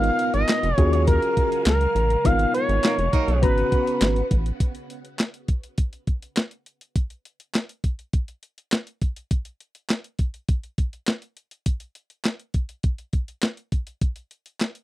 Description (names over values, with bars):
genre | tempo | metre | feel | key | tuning
early-eighties boogie funk | 102 BPM | 4/4 | straight | G# dorian | A4 = 443 Hz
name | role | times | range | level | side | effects
expressive synth lead | melody | 0.0-4.3 s | A#4 to E#5 | -23 LUFS | equal | chorus
tine electric piano | accompaniment | 0.0-4.2 s | B3 to A#5 | -26 LUFS | left 2 dB | overdrive, medium stereo tremolo
phased string machine | sustained chords | 0.0-4.6 s | B2 to E#5 | -34 LUFS | right 1 dB | ensemble chorus, phaser
rubbery square bass | bass | 0.0-4.5 s | E#1 to D#2 | -22 LUFS | equal | none
clean 12-bit digital drum machine | drums | 0.0-14.8 s | handclaps, hi-hat, kick drum, snare drum | -22 LUFS | equal | none
clear horn section | second line | 2.8-3.5 s | E#3 to A#4 | -27 LUFS | right 7 dB | none
room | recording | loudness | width
little or no reverb | dry, close 1970s-style studio recording | -21 LUFS | side -15 dB against mid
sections
0.0-4.6 A section; 4.6-14.8 B section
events
band accent 2.2-4.6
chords
0.0 G#m69; 0.8 D#m11; 2.2 G#m69; 3.4 G#m11; 4.6 N.C.